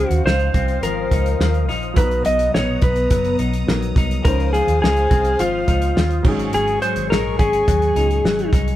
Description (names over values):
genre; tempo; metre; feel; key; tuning
indie pop, bedroom pop; 105 BPM; 4/4; straight; Db major; A4 = 440 Hz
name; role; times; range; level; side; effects
electric slide guitar; melody; 0.0-8.5 s; F4 to Eb5; -20 LUFS; equal; none
semi-hollow electric guitar; accompaniment; 0.0-8.8 s; Ab2 to F4; -27 LUFS; left 6 dB; warbly pitch drift
warm upright piano; accompaniment; 0.0-8.8 s; F3 to Bb5; -31 LUFS; right 2 dB; none
phased analog pad; sustained chords; 0.0-8.8 s; Cb4 to Eb6; -27 LUFS; left 1 dB; phaser, chorus
vintage muted fingered electric bass; bass; 0.0-8.8 s; Gb1 to Eb2; -21 LUFS; equal; none
damped 70s drum kit; drums; 0.1-8.8 s; crash cymbal, hi-hat, kick drum, snare drum; -19 LUFS; equal; none
room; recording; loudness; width
moderate studio reverb, RT60 0.5 s; band playing live in one room; -16 LUFS; side -13 dB against mid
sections
0.0-8.8 A section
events
none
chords
0.0 Dbmaj9; 2.0 Cbmaj7; 4.2 Dbmaj9; 6.2 Ab7sus4